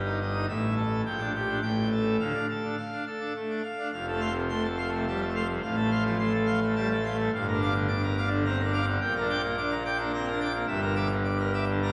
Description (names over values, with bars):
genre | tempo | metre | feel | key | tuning
classical, organ toccata | 106 BPM | 3/4 | straight | D minor, F major from 3.9 s | A4 = 440 Hz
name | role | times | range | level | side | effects
pipe organ, full organ | solo | 0.0-11.9 s | F1 to D6 | -28 LUFS | equal | none
room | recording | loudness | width
wet church reverb, RT60 3.3 s | studio ambience | -28 LUFS | mono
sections
0.0-3.9 A section; 3.9-11.9 B section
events
none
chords
0.5 A5; 1.1 Gm/Bb; 1.6 Gsus2/A; 2.2 Dm; 3.9 F; 5.6 F/A; 7.3 Gm7; 9.0 Gm/Bb; 10.7 Em7b5/G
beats
| 0.49 1.06 1.63 | 2.20 2.78 3.36 | 3.93 4.50 5.07 | 5.63 6.20 6.76 | 7.33 7.89 8.45 | 9.01 9.57 10.13 | 10.69 11.24 11.80